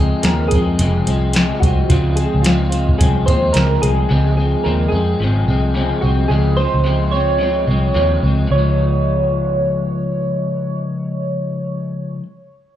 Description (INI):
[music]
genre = indie pop, bedroom pop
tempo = 109 BPM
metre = 4/4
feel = swing 60% on 16ths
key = Db major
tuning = A4 = 442 Hz
[part]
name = soft electric-piano-like synth keys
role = melody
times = 0.0-12.2 s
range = F4 to Db5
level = -21 LUFS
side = right 2 dB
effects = phaser, wide subtle chorus, plate reverb, slapback echo, tape echo
[part]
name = electric guitar through a small old amp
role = accompaniment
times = 0.0-12.2 s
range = Db3 to C4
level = -20 LUFS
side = left 3 dB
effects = analog chorus, vibrato effect, slapback echo
[part]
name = vintage muted picked electric bass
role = bass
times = 0.0-12.2 s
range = F1 to F2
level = -17 LUFS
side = equal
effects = none
[part]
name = soft vintage rhythm box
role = drums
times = 0.2-4.0 s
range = hi-hat, kick drum, snare drum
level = -16 LUFS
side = equal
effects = none
[sound]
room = light reverb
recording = live gig heard through the venue's PA, club reverb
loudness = -14 LUFS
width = side -11 dB against mid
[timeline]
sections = 0.0-8.5 A section; 8.5-10.7 B section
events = none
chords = 0.0 Bbm11/F; 4.1 Dbmaj7; 8.5 Db